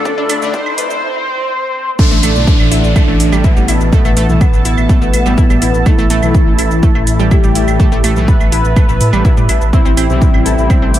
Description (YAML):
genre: melodic techno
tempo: 124 BPM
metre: 4/4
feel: straight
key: A minor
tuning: A4 = 439 Hz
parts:
  - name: fat analog lead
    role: melody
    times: 0.0-11.0 s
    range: B3 to C5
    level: -18 LUFS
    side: equal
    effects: lush chorus, sidechain pumping, analog delay
  - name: sweeping resonant pad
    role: sustained chords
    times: 0.0-11.0 s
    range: E4 to B5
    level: -25 LUFS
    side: right 4 dB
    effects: chorus, sidechain pumping
  - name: analog synth brass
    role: stabs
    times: 0.0-11.0 s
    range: A2 to D4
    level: -20 LUFS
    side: left 2 dB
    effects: chorus, sidechain pumping, analog delay
  - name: swelling detuned saw bass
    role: bass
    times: 0.0-11.0 s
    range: A1 to A2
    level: -14 LUFS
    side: equal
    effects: sidechain pumping, high-pass filter
  - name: riser and downlifter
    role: sound effects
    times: 0.0-5.9 s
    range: none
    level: -24 LUFS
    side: equal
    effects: none
  - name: analog pluck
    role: arpeggios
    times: 0.1-10.9 s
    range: G3 to B4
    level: -21 LUFS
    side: right 1 dB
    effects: chorus, sidechain pumping, tape echo
  - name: electronic kick drum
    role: drums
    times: 0.1-10.8 s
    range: none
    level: -10 LUFS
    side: equal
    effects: high-pass filter on kick, small room reverb
  - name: house drum kit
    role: drums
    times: 0.1-11.0 s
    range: claves, crash cymbal, hi-hat, shaker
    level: -23 LUFS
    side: right 3 dB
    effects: high-pass filter on perc, small room reverb, high-pass filter on hats, high-pass filter on cymbals, analog delay
room: light reverb, digital ambience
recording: echo-heavy mix, high-pass filter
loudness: -9 LUFS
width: side -12 dB against mid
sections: 0.0-2.0 A section; 2.0-11.0 B section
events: build-up 0.0-2.0; riser 0.0-1.0; filter sweep on synth pluck 0.0-2.0; break 1.0-2.0; drop 2.0-11.0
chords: 0.0 Dm/A; 2.0 A5; 9.7 C/A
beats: | 0.05 0.54 1.02 1.50 | 1.99 2.47 2.96 3.44 | 3.92 4.41 4.89 5.38 | 5.86 6.34 6.83 7.31 | 7.80 8.28 8.76 9.25 | 9.73 10.21 10.70